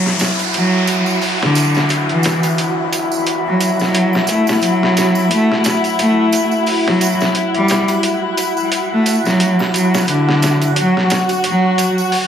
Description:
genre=trip hop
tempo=88 BPM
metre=4/4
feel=swing 56% on 16ths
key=unclear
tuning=A4 = 440 Hz
part: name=rich cello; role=melody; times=0.0-11.9 s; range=D3 to A3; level=-16 LUFS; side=equal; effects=tape echo
part: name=dark studio string section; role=sustained chords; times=0.0-12.3 s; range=E4 to F#4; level=-19 LUFS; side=left 5 dB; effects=vintage 12-bit sampler grit, low-pass filter
part: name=downlifter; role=sound effects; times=0.0-5.3 s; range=none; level=-22 LUFS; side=left 1 dB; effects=none
part: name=wind-like tuned noise texture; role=texture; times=0.2-12.3 s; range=F#4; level=-23 LUFS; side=right 7 dB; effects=built-in reverb
part: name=trip hop sampler-style drum kit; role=drums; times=0.1-12.3 s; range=hi-hat, snare drum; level=-21 LUFS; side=equal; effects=high-pass filter on snare, small room ambience, high-pass filter on hats, high-pass filter on kick
part: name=tambourine and triangle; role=percussion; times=0.2-12.3 s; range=none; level=-27 LUFS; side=right 6 dB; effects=none
room=light reverb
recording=none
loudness=-13 LUFS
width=side -8 dB against mid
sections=0.0-12.3 A section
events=filter sweep on string section 0.0-12.3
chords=0.0 Dadd9 (rootless); 10.8 N.C.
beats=0.54 1.22 1.90 | 2.59 3.27 3.95 4.63 | 5.31 6.00 6.68 7.36 | 8.04 8.72 9.40 10.09 | 10.77 11.45 12.13

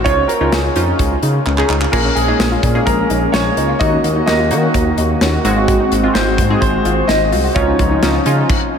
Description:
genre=synth-pop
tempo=128 BPM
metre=4/4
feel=straight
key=Bb minor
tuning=A4 = 442 Hz
part: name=warm concert grand piano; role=melody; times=0.0-8.4 s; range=Ab4 to Eb5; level=-19 LUFS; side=equal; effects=lush chorus, ping-pong delay
part: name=smooth synth bass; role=bass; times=0.0-8.4 s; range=Ab1 to Eb3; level=-18 LUFS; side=equal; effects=none
part: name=funky polysynth comp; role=accompaniment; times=0.1-8.5 s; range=Ab3 to Ab4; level=-19 LUFS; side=right 1 dB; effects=chorus
part: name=soft round pluck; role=arpeggios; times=0.1-8.5 s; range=Db4 to Gb4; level=-24 LUFS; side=left 3 dB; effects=chorus, ping-pong delay
part: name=modern studio drum kit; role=drums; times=0.1-8.6 s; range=crash cymbal, handclaps, hi-hat, kick drum, snare drum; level=-19 LUFS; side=equal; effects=none
part: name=warm analog pad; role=sustained chords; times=1.9-8.5 s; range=Eb3 to Gb4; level=-20 LUFS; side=left 1 dB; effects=chorus
room=wet cathedral reverb, RT60 6.7 s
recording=dreamy mix soaked in reverb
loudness=-12 LUFS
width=side -7 dB against mid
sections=0.0-1.9 A section; 1.9-8.8 B section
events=drum fill 1.5-1.9; stop 8.5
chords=0.1 Dbadd9; 1.9 Bbm7; 3.8 Ebm; 5.4 Ab7; 7.6 Dbadd9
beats=| 0.06 0.53 0.99 1.46 | 1.93 2.40 2.87 3.34 | 3.81 4.28 4.74 5.21 | 5.68 6.15 6.62 7.09 | 7.56 8.03 8.49

